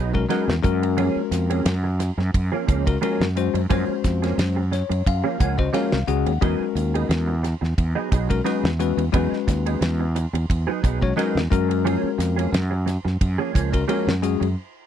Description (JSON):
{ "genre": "electric jazz fusion", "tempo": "88 BPM", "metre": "4/4", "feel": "swing 55% on 16ths", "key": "unclear", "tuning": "A4 = 438 Hz", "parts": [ { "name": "mellow electric guitar", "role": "stabs", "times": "0.0-14.4 s", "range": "E#3 to G#4", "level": "-26 LUFS", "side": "right 7 dB", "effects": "ensemble chorus" }, { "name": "fretless electric bass", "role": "bass", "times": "0.0-14.5 s", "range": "B1 to F#2", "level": "-23 LUFS", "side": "right 1 dB", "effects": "none" }, { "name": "bell-like tine electric piano", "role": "accompaniment", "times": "0.1-14.5 s", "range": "G#3 to F#5", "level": "-24 LUFS", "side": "moving between left 16 dB and left 6 dB", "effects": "auto-pan" }, { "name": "damped 70s drum kit", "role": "drums", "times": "0.1-14.6 s", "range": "hi-hat, kick drum, ride cymbal, snare drum", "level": "-25 LUFS", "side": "right 1 dB", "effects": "none" } ], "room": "little or no reverb", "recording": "dry, close 1970s-style studio recording", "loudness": "-20 LUFS", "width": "side -10 dB against mid", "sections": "0.0-14.9 A section", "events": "tine electric piano fill 4.4-6.4; band accent 14.6", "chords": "0.0 Emaj9; 0.6 F#maj9; 6.4 Emaj9; 11.5 F#maj9", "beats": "0.30 | 0.98 1.66 2.34 3.02 | 3.70 4.38 5.06 5.74 | 6.42 7.09 7.77 8.45 | 9.13 9.81 10.49 11.17 | 11.85 12.53 13.21 13.89" }